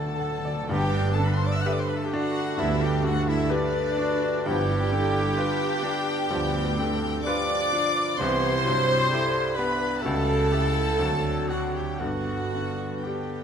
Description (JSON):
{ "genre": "classical, romantic movement for piano and orchestra", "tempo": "64 BPM", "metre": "4/4", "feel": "uneven beats, rubato", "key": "G major", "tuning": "A4 = 441 Hz", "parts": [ { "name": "clear baby grand piano", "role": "melody", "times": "0.0-13.4 s", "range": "C2 to A5", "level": "-30 LUFS", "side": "left 1 dB", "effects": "none" }, { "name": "warm chamber violin section", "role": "melody", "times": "0.0-13.4 s", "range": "D5 to F#6", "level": "-34 LUFS", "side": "left 6 dB", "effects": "none" }, { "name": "mellow large flute ensemble", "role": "second line", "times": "0.0-13.4 s", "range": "D5 to F#6", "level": "-36 LUFS", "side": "left 1 dB", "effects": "none" }, { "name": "warm chamber violin section", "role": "second line", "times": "0.0-13.4 s", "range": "D4 to F#5", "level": "-36 LUFS", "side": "left 3 dB", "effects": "none" }, { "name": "warm oboe", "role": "second line", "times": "0.0-13.4 s", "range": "D4 to F#5", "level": "-36 LUFS", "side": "right 1 dB", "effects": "none" }, { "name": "warm chamber viola section", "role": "accompaniment", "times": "0.0-13.4 s", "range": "D4 to F#5", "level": "-33 LUFS", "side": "right 3 dB", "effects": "none" }, { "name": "dark French horn section", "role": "sustained chords", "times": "0.0-13.4 s", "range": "D4 to B4", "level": "-34 LUFS", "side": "left 5 dB", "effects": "none" }, { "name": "dark trumpet", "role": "stabs", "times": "0.0-13.4 s", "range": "D4 to F#5", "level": "-32 LUFS", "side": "right 2 dB", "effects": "none" }, { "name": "dark chamber double bass section", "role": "bass", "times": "0.0-12.9 s", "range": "G1 to D2", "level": "-32 LUFS", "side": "right 2 dB", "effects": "none" }, { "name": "warm chamber cello section", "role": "bass", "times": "0.0-12.9 s", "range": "D2 to D3", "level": "-32 LUFS", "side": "right 3 dB", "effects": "none" }, { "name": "timpani", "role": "percussion", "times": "0.0-5.8, 12.0-13.4 s", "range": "G2 to D3", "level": "-36 LUFS", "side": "left 2 dB", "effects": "none" }, { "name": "warm clarinet", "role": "second line", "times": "0.7-13.4 s", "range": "B3 to G4", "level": "-37 LUFS", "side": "left 1 dB", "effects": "none" }, { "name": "mellow bassoon", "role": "accompaniment", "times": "0.7-13.4 s", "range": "D3 to B3", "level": "-35 LUFS", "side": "right 2 dB", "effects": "none" }, { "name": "clear trombone section", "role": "sustained chords", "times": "0.7-12.4 s", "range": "D3 to C4", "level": "-37 LUFS", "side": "right 3 dB", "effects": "none" } ], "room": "moderate scoring stage reverb, RT60 1.9 s", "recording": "none", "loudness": "-22 LUFS", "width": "side -7 dB against mid", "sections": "0.7-13.4 A section", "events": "timpani fill 0.0-0.7", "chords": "0.0 D; 0.7 G; 4.5 G7; 8.2 Cmaj7; 10.0 A7/C#; 11.0 D7; 12.0 G" }